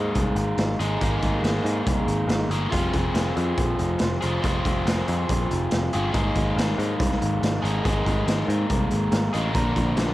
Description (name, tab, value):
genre	indie rock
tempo	141 BPM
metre	4/4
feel	straight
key	unclear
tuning	A4 = 440 Hz
part	crunchy overdriven guitar	riff	0.0-10.1 s	Bb2 to Bb4	-25 LUFS	equal	cassette tape
part	picked electric bass	bass	0.0-10.1 s	F1 to Ab2	-26 LUFS	equal	none
part	raw garage drum kit	drums	0.1-10.1 s	hi-hat, kick drum, snare drum	-27 LUFS	equal	cassette tape
room	small room ambience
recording	home recording on cassette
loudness	-21 LUFS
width	side -16 dB against mid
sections	0.0-10.1 A section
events	none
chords	0.0 Absus2; 2.7 Fm; 6.1 Absus2; 9.6 Bb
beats	0.16 0.59 | 1.02 1.44 1.87 2.30 | 2.73 3.15 3.58 4.01 | 4.43 4.86 5.29 5.72 | 6.14 6.57 7.00 7.42 | 7.85 8.28 8.70 9.13 | 9.55 9.98